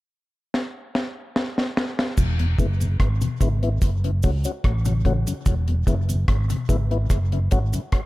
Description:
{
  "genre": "dub reggae",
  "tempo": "73 BPM",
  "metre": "4/4",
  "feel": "straight",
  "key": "E major",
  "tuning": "A4 = 440 Hz",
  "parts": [
    { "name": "deep reggae drum kit", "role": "drums", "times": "0.5-8.1 s", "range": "crash cymbal, hi-hat, kick drum, rim click, snare drum", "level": "-23 LUFS", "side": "equal", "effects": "none" },
    { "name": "semi-hollow electric guitar", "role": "arpeggios", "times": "2.2-6.9 s", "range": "B2 to E3", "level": "-31 LUFS", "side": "left 5 dB", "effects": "low-pass filter, dub echo" },
    { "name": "mellow fretless electric bass", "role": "bass", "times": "2.2-7.7 s", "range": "E1 to C#2", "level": "-22 LUFS", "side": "equal", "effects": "none" },
    { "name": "cabasa", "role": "percussion", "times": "2.2-7.9 s", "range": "none", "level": "-40 LUFS", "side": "right 6 dB", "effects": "dub echo" },
    { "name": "mellow tonewheel organ", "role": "accompaniment", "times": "2.4-7.8 s", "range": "E2 to F#4", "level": "-29 LUFS", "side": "left 3 dB", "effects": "slow rotary speaker, low-pass filter, dub echo" }
  ],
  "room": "studio reverb",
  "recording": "echo-heavy mix",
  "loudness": "-20 LUFS",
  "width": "side -18 dB against mid",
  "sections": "0.0-2.2 A section; 2.2-8.1 B section",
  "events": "drum fill 0.5-2.2; filter sweep 2.2-8.1",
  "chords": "0.0 N.C.; 2.2 E; 3.8 F#m; 5.5 E; 7.1 F#m",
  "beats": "0.53 1.35 | 2.18 3.00 3.82 4.64 | 5.46 6.28 7.10 7.92"
}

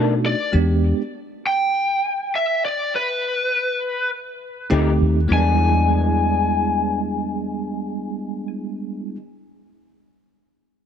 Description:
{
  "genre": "blues",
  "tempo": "100 BPM",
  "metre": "4/4",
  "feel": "swing 54% on 16ths",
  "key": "E mixolydian",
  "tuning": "A4 = 440 Hz",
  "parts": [
    { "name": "bell-like tine electric piano", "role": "accompaniment", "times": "0.0-1.0, 4.7-9.2 s", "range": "G3 to G4", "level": "-23 LUFS", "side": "right 3 dB", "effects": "fast stereo tremolo" },
    { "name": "electric guitar through a small old amp", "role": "stabs", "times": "0.0-0.1, 4.7-9.2 s", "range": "B2 to G4", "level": "-28 LUFS", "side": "left 5 dB", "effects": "ensemble chorus" },
    { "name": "vintage muted fingered electric bass", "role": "bass", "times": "0.0-0.9, 4.7-9.2 s", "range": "D2 to B2", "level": "-20 LUFS", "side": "equal", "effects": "none" },
    { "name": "lead guitar through a small cranked amp", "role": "melody", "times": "0.3-8.5 s", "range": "B4 to G#5", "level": "-22 LUFS", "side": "left 2 dB", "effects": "overdrive, analog delay" }
  ],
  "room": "light reverb, digital ambience",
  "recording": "none",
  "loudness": "-18 LUFS",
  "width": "side -8 dB against mid",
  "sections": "0.0-5.3 A section; 5.3-7.7 B section",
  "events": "none",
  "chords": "0.0 B7#9; 0.5 E7#9; 4.7 F9; 5.3 E7#9",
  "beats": "| 0.53 1.13 1.73 2.32 | 2.92 3.52 4.11 4.71 | 5.31 5.91 6.50 7.10"
}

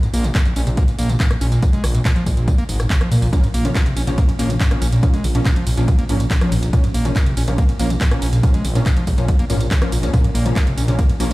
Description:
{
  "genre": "driving peak-time techno",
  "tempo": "141 BPM",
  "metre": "4/4",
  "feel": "straight",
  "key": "Bb minor",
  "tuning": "A4 = 440 Hz",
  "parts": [
    { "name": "overdriven acid bass", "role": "riff", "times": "0.0-11.3 s", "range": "Bb1 to Db4", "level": "-22 LUFS", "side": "equal", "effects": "sidechain pumping, dub echo" },
    { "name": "techno drum kit", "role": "drums", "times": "0.0-11.3 s", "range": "handclaps, hi-hat, ride cymbal, rim click, tambourine", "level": "-28 LUFS", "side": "equal", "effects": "sidechain pumping on hats, sidechain pumping on perc, sidechain pumping on cymbals" },
    { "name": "dark detuned saw bass", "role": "bass", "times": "0.1-11.3 s", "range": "Ab1 to Bb2", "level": "-20 LUFS", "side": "equal", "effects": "sidechain pumping" },
    { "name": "electronic kick drum", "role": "drums", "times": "0.3-11.1 s", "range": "none", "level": "-17 LUFS", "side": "equal", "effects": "none" },
    { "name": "rave stab", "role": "stabs", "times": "3.3-11.3 s", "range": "F3 to Db4", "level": "-25 LUFS", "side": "left 1 dB", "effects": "chorus, built-in reverb, sidechain pumping, dub echo" }
  ],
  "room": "digital ambience",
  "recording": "played on a big sound system in a bare room, large studio reverb",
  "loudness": "-15 LUFS",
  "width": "side -19 dB against mid",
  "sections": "0.0-11.3 A section",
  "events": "none",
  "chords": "0.0 Bbm",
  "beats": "0.35 0.77 1.20 | 1.62 2.05 2.48 2.90 | 3.33 3.75 4.18 4.60 | 5.03 5.46 5.88 6.31 | 6.73 7.16 7.58 8.01 | 8.43 8.86 9.29 9.71 | 10.14 10.56 10.99"
}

